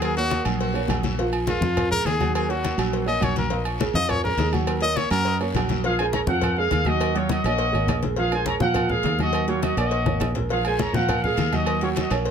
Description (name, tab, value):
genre	latin, salsa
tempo	206 BPM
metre	4/4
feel	straight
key	Bb minor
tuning	A4 = 445 Hz
part	brilliant trumpet	melody	0.0-5.4 s	F4 to Eb5	-26 LUFS	left 3 dB	tape echo
part	dark upright piano	accompaniment	0.0-12.3 s	F3 to Gb5	-26 LUFS	right 5 dB	none
part	fingered electric bass	bass	0.0-12.3 s	Ab1 to Bb2	-26 LUFS	equal	none
part	agogo bells and timbales	percussion	0.0-12.3 s	none	-32 LUFS	right 5 dB	none
part	congas	percussion	0.0-12.3 s	none	-29 LUFS	left 4 dB	none
part	cowbell	percussion	0.0-12.3 s	none	-33 LUFS	left 5 dB	none
part	guiro	percussion	0.0-5.8, 10.5-12.3 s	none	-39 LUFS	left 4 dB	none
part	bright trumpet section	melody	5.8-12.1 s	F4 to Bb5	-26 LUFS	left 1 dB	none
room	light reverb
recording	none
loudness	-20 LUFS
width	side -7 dB against mid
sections	0.0-5.8 A section; 5.8-12.3 B section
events	trumpet solo 0.0-5.8; drum fill 10.1-10.5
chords	0.0 Ebm7; 1.2 Bb5; 2.3 Ebm7; 3.5 Bb5; 4.7 Ebm7; 5.8 Bb7(no3); 7.0 Ebm7; 8.2 Bb7(no3); 9.3 Ebm7; 10.5 Bb7(no3); 11.7 Ebm7